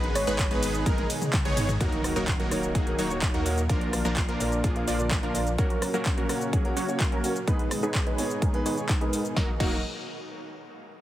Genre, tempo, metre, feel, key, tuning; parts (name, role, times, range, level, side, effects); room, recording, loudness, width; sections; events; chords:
EDM, festival progressive house; 127 BPM; 4/4; straight; Eb minor; A4 = 441 Hz
lush unison pad; sustained chords; 0.0-9.6 s; Bb2 to Ab4; -37 LUFS; equal; chorus, sidechain pumping
plucky unison lead; arpeggios; 0.0-1.7 s; Bb4 to Db5; -36 LUFS; left 1 dB; sidechain pumping, dub echo
supersaw stab; riff; 0.0-9.8 s; F3 to D5; -30 LUFS; right 1 dB; cassette tape, sidechain pumping, low-pass filter, dub echo
saturated sub bass; bass; 0.0-5.6, 9.4-9.8 s; Eb1 to Eb2; -32 LUFS; equal; sidechain pumping
big-room dance drum kit; drums; 0.0-9.7 s; cabasa, crash cymbal, handclaps, hi-hat, ride cymbal, rim click, snare drum, toms; -32 LUFS; equal
soft struck synth lead; melody; 0.2-0.6 s; Db5; -36 LUFS; left 1 dB; chorus, dub echo
electronic kick drum; drums; 0.4-9.7 s; -26 LUFS; equal
clear concert grand piano; accompaniment; 1.8-9.8 s; Ab2 to D5; -32 LUFS; right 1 dB; sidechain pumping, dub echo
impact; sound effects; 1.8-3.7 s; -39 LUFS; equal
little or no reverb; heavily compressed radio sound, multiband compression; -24 LUFS; side -13 dB against mid
0.0-1.8 A section; 1.8-9.4 B section; 9.4-11.0 C section
drop 0.0-1.8; drum fill 0.9-1.8; band accent 1.3; impact 1.8-3.7; filter sweep on supersaw synth 1.8-9.4
0.0 Abm; 1.8 Ebm; 3.7 Bb; 5.6 Gb; 7.5 Abm; 9.4 Ebm